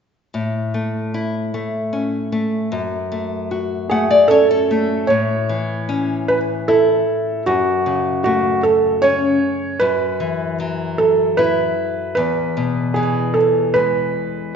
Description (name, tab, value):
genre	children's music, lullaby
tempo	76 BPM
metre	3/4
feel	rubato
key	A major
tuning	A4 = 440 Hz
part	nylon-string guitar	accompaniment	0.3-14.5 s	E2 to F#5	-20 LUFS	left 3 dB	none
part	felt-muted upright piano	melody	3.9-14.5 s	F#4 to C#5	-17 LUFS	right 3 dB	none
room	wet recital hall reverb, RT60 1.7 s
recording	recorded in a church or concert hall, nothing above 7.7 kHz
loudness	-16 LUFS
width	side -6 dB against mid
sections	0.3-5.1 A section; 5.1-14.6 B section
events	nylon-string guitar fill 3.5-5.1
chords	0.3 A; 2.7 F#m; 5.1 A; 7.5 F#m; 9.8 Bsus4/F#; 12.2 E